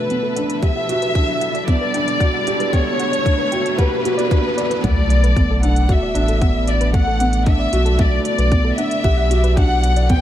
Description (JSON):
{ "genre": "piano and strings electronica", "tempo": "114 BPM", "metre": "4/4", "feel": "straight", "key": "B minor", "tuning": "A4 = 440 Hz", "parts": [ { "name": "rich chamber violin section", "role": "melody", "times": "0.0-10.2 s", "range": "B4 to G5", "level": "-21 LUFS", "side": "left 2 dB", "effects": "none" }, { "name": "warm studio string section", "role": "sustained chords", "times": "0.0-10.2 s", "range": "B2 to E5", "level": "-32 LUFS", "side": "right 1 dB", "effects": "none" }, { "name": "soft round pluck", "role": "arpeggios", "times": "0.0-10.0 s", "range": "A4 to G5", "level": "-31 LUFS", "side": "left 3 dB", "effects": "chorus, sidechain pumping, ping-pong delay" }, { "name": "felt-muted upright piano", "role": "riff", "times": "0.0-10.2 s", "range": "A3 to G4", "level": "-22 LUFS", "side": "right 2 dB", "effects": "none" }, { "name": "riser and sub drop", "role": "sound effects", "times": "0.0-6.9 s", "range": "none", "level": "-26 LUFS", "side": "equal", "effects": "none" }, { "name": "electronic hi-hat", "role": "drums", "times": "0.1-10.2 s", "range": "none", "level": "-33 LUFS", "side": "right 4 dB", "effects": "high-pass filter on hats" }, { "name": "electronic kick drum", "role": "drums", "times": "0.6-10.2 s", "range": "none", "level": "-16 LUFS", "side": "equal", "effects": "none" }, { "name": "warm sub bass", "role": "bass", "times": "4.8-10.2 s", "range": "A1 to B1", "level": "-17 LUFS", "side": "equal", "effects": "sidechain pumping" } ], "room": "moderate recital hall reverb, RT60 1.7 s, small room ambience", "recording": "dark, warm production", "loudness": "-15 LUFS", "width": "side -11 dB against mid", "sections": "0.0-4.8 A section; 4.8-10.2 B section", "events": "build-up 0.0-4.8; riser 0.0-4.8; filter sweep on synth arpeggio sound 0.0-4.8; drop 4.8-10.2; impact 4.8-6.9", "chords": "0.0 Bm7; 0.6 Gmaj7/B; 4.8 Bm7; 9.0 Gmaj7/B" }